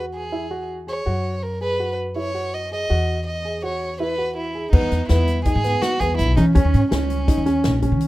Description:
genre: progressive instrumental, band music in an uneven meter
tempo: 164 BPM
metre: 5/4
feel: straight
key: E lydian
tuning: A4 = 440 Hz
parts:
  - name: warm violin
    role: melody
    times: 0.0-8.0 s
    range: C#4 to D#5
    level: -25 LUFS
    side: right 1 dB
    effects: none
  - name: dark baby grand piano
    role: arpeggios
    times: 0.0-8.1 s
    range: B3 to G#4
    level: -25 LUFS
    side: equal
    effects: none
  - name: upright bass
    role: bass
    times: 0.0-8.1 s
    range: A#1 to E3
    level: -21 LUFS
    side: equal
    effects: none
  - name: swinging big-band drum kit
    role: drums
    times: 4.7-8.1 s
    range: crash cymbal, hi-hat, kick drum, snare drum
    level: -24 LUFS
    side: left 1 dB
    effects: none
room: studio ambience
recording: rough home demo mix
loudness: -19 LUFS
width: side -16 dB against mid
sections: 0.0-4.7 A section; 4.7-8.1 B section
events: none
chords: 0.0 E; 1.1 F#5; 2.9 E; 4.7 Emaj7; 6.6 D#5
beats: 0.34 0.70 | 1.07 1.44 1.80 2.17 2.54 | 2.90 3.27 3.63 4.00 4.37 | 4.73 5.10 5.46 5.83 6.19 | 6.55 6.92 7.28 7.65 8.01

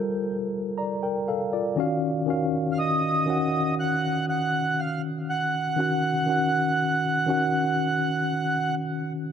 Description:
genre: R&B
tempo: 60 BPM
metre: 4/4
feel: straight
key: unclear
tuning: A4 = 440 Hz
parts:
  - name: mellow tine electric piano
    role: accompaniment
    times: 0.0-9.3 s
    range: Eb3 to Bb5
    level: -25 LUFS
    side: left 2 dB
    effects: medium stereo tremolo
  - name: mellow accordion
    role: melody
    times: 2.7-8.7 s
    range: Eb5 to Gb5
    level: -26 LUFS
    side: right 4 dB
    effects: analog delay
room: moderate spring reverb, RT60 1.2 s, small room ambience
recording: echo-heavy mix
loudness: -23 LUFS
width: side -8 dB against mid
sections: 0.0-9.3 A section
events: none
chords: 0.0 Gm9; 1.8 Ebm9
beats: 0.78 | 1.78 2.78 3.78 4.78 | 5.78 6.78 7.78 8.78

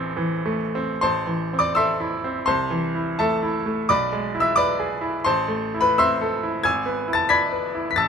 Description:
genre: classical, romantic character piece for solo piano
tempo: 68-93 BPM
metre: 2/4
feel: rubato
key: A minor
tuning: A4 = 441 Hz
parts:
  - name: bright baby grand piano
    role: solo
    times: 0.0-8.1 s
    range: G#1 to B6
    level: -20 LUFS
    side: equal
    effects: none
room: light reverb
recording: minimal, uncompressed stereo recording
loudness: -20 LUFS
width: side -6 dB against mid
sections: 0.0-1.0 A section; 1.0-8.1 A section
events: none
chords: 0.0 Am; 2.5 Am/C; 3.9 E7/B; 5.2 Am; 6.6 E7/G#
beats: 0.16 | 1.01 1.75 | 2.46 3.17 | 3.87 4.55 | 5.23 5.97 | 6.63 7.29 | 7.96

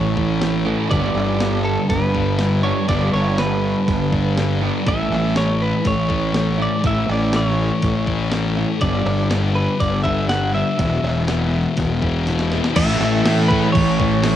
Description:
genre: rock, shoegaze and dream pop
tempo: 122 BPM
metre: 4/4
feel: straight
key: A major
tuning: A4 = 439 Hz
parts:
  - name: direct-recorded clean electric guitar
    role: melody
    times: 0.0-14.4 s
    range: A4 to F#5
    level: -24 LUFS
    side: equal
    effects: cassette tape, tape echo
  - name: direct-recorded clean electric guitar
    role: arpeggios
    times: 0.0-14.4 s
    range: E3 to G#4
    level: -32 LUFS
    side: left 6 dB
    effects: none
  - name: overdriven semi-hollow guitar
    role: riff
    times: 0.0-14.4 s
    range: G2 to E4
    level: -24 LUFS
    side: right 9 dB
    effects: reverse reverb
  - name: thick fuzz guitar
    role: riff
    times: 0.0-14.4 s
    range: E2 to A3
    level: -22 LUFS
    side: left 6 dB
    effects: distortion, wide subtle chorus
  - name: fuzz fingered electric bass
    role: bass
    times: 0.0-14.4 s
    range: E1 to A2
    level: -21 LUFS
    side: equal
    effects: overdrive
  - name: clean 12-bit digital drum machine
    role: drums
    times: 0.2-14.4 s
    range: crash cymbal, hi-hat, kick drum, snare drum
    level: -24 LUFS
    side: equal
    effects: none
  - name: distorted electric guitar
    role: riff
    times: 12.8-14.4 s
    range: A2 to A3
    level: -27 LUFS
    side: right 1 dB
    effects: overdrive
room: little or no reverb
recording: home recording on cassette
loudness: -16 LUFS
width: side -11 dB against mid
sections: 0.0-12.8 A section; 12.8-14.4 B section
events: drum fill 12.3-12.8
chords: 0.0 A; 0.9 G; 4.9 A; 8.8 G; 10.8 Eadd9; 12.8 Amaj7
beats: 0.42 | 0.91 1.41 1.90 2.39 | 2.89 3.38 3.87 4.37 | 4.86 5.35 5.85 6.34 | 6.83 7.33 7.82 8.32 | 8.81 9.30 9.80 10.29 | 10.79 11.28 11.78 12.27 | 12.76 13.25 13.75 14.24

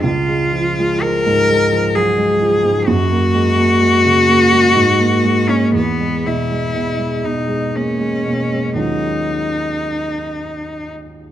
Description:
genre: classical, impressionist duo for cello and grand piano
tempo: 55-66 BPM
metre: 3/4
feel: rubato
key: unclear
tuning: A4 = 438 Hz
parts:
  - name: clear cello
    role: melody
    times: 0.0-10.9 s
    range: B3 to Bb4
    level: -16 LUFS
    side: left 2 dB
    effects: none
  - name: dark grand piano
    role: accompaniment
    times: 0.0-11.3 s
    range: Db2 to F4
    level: -17 LUFS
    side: right 2 dB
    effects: none
room: moderate scoring stage reverb, RT60 1.9 s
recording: close, detailed microphones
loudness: -13 LUFS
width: side -11 dB against mid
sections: 0.0-11.3 A section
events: none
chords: 0.0 Db; 2.9 Gbadd9; 4.8 Absus2; 5.7 E; 8.8 Ebm11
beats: | 0.04 1.03 1.96 | 2.88 3.82 4.76 | 5.75 6.74 7.74 | 8.79 9.87 10.95

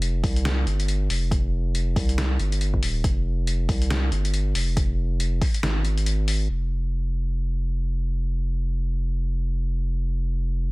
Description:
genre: deep dubstep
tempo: 139 BPM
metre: 4/4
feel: swing 59% on 16ths, half-time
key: F minor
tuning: A4 = 439 Hz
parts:
  - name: saturated sub bass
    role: bass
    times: 0.0-10.7 s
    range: Eb1 to C2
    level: -23 LUFS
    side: equal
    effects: none
  - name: trip hop sampler-style drum kit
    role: drums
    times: 0.0-6.4 s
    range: hi-hat, snare drum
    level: -29 LUFS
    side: left 1 dB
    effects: low-pass filter on hats, low-pass filter on snare, low-pass filter on room
  - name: electronic kick drum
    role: drums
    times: 0.2-5.5 s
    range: none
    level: -23 LUFS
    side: equal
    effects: overdrive
room: little or no reverb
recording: none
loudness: -22 LUFS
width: side -24 dB against mid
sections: 0.0-6.5 A section; 6.5-10.7 B section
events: kick drops out 5.6-6.5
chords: none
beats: 0.02 0.45 0.88 | 1.31 1.75 2.18 2.61 | 3.04 3.47 3.90 4.34 | 4.77 5.20 5.63 6.06 | 6.50 6.93 7.36 7.79 | 8.22 8.65 9.09 9.52 | 9.95 10.38

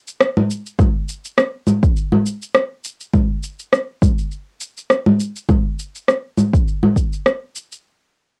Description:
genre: downtempo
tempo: 102 BPM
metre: 4/4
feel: swing 55% on 16ths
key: none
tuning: none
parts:
  - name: electronic shaker, rim click and congas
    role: drums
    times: 0.1-7.8 s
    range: none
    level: -19 LUFS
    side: equal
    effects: overdrive, cassette tape
  - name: electronic kick drum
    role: drums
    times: 0.8-7.1 s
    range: none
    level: -19 LUFS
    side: equal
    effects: overdrive, cassette tape
room: wet booth ambience, RT60 0.3 s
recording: home recording on cassette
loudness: -18 LUFS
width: mono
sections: 0.0-7.8 A section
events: none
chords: none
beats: 0.19 | 0.78 1.37 1.96 2.55 | 3.14 3.72 4.31 4.90 | 5.49 6.08 6.67 7.25

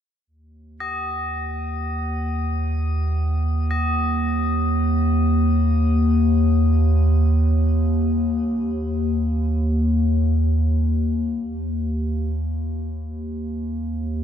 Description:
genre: world meditative, free-time meditation music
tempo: free time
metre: none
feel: none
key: unclear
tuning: A4 = 440 Hz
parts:
  - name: warbly tape-like pad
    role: drone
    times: 1.2-14.2 s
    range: Eb2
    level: -19 LUFS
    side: equal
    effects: chorus, built-in reverb
  - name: tubular bells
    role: texture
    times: 0.8-10.9 s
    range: Eb5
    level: -29 LUFS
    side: left 3 dB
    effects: shimmer reverb
room: wet cathedral reverb, RT60 6.0 s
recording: dark, warm production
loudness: -19 LUFS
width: side -9 dB against mid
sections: 0.3-14.2 A section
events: none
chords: none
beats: free time

